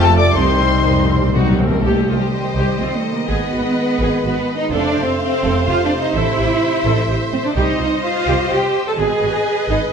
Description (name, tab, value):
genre	cinematic, heroic adventure film score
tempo	126 BPM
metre	3/4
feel	straight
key	C dorian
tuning	A4 = 442 Hz
part	rich symphonic violin section	melody	0.0-9.9 s	F#4 to D6	-25 LUFS	left 5 dB	none
part	mellow clarinet	second line	0.0-1.3 s	A4 to D5	-32 LUFS	left 2 dB	none
part	silver concert flute	second line	0.0-1.3 s	A5 to D6	-24 LUFS	left 6 dB	none
part	warm studio violin section	second line	0.0-9.9 s	A4 to F5	-24 LUFS	left 3 dB	none
part	rich symphonic viola section	accompaniment	0.0-9.9 s	Eb3 to C5	-24 LUFS	equal	none
part	dark French horn section	sustained chords	0.0-1.6 s	C4 to F4	-23 LUFS	left 8 dB	none
part	warm trombone section	sustained chords	0.0-9.1 s	Cb3 to A3	-25 LUFS	right 3 dB	none
part	mellow trumpet section	stabs	0.0-1.3 s	A4 to D5	-27 LUFS	left 1 dB	none
part	dark symphonic cello section	bass	0.0-9.8 s	C2 to A4	-19 LUFS	right 2 dB	none
part	rich symphonic double bass section	bass	0.0-9.8 s	F1 to C2	-21 LUFS	right 2 dB	none
part	timpani	percussion	0.4-2.5, 7.6-8.2 s	C3	-23 LUFS	left 2 dB	none
room	wet scoring stage reverb, RT60 1.6 s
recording	nothing above 10.5 kHz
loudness	-14 LUFS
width	side -6 dB against mid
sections	0.0-1.8 A section; 1.8-9.9 B section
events	timpani fill 0.3-1.8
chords	0.3 Cm; 3.3 Abm; 4.7 F; 6.1 Am; 7.6 Cm; 9.0 Abm